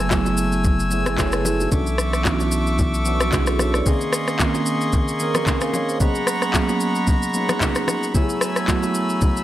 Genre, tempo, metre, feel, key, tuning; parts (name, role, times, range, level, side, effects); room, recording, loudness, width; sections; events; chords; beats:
amapiano; 112 BPM; 4/4; swing 55% on 16ths; A4 = 439 Hz
mellow tine electric piano; accompaniment; 0.0-9.4 s; Eb3 to Ab5; -23 LUFS; right 3 dB; phaser
accordion; sustained chords; 0.0-9.4 s; Gb3 to Fb6; -25 LUFS; left 1 dB; sidechain pumping
saturated sub bass; bass; 0.0-3.8 s; Gb1 to B1; -24 LUFS; equal
afro-pop drum kit; drums; 0.1-9.4 s; handclaps, kick drum, rim click, shaker; -22 LUFS; equal
bongos and congas; percussion; 0.1-9.4 s; -29 LUFS; left 3 dB
light reverb; -18 LUFS; side -13 dB against mid
0.0-9.4 A section
0.0 Gbm11; 1.7 Bm11; 3.9 Bbm11; 6.0 Abm11; 8.1 Gbm11
0.11 0.65 1.18 | 1.72 2.25 2.79 3.33 | 3.86 4.40 4.93 5.47 | 6.00 6.54 7.08 7.61 | 8.15 8.68 9.22